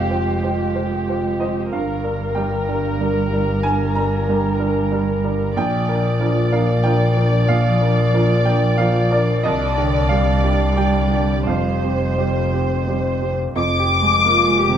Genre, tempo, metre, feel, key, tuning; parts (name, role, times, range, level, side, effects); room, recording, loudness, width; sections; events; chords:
neoclassical piano and strings; 84-96 BPM; 3/4; rubato; F dorian; A4 = 441 Hz
muted chamber violin section; melody; 0.0-14.8 s; G4 to D6; -22 LUFS; left 3 dB
muted cello; second line; 0.0-14.8 s; F3 to G4; -26 LUFS; right 4 dB
clear upright piano; accompaniment; 0.0-14.8 s; Bb1 to Bb5; -21 LUFS; right 2 dB
muted double bass; bass; 0.0-14.8 s; F1 to C2; -21 LUFS; left 1 dB
moderate large studio reverb, RT60 0.8 s; band playing live in one room; -16 LUFS; side -9 dB against mid
0.0-13.6 A section; 13.6-14.8 B section
0.0 Fmadd9; 1.7 Gm; 5.6 Bb; 9.4 Cmadd9; 11.5 Fsus2; 13.6 Fmadd9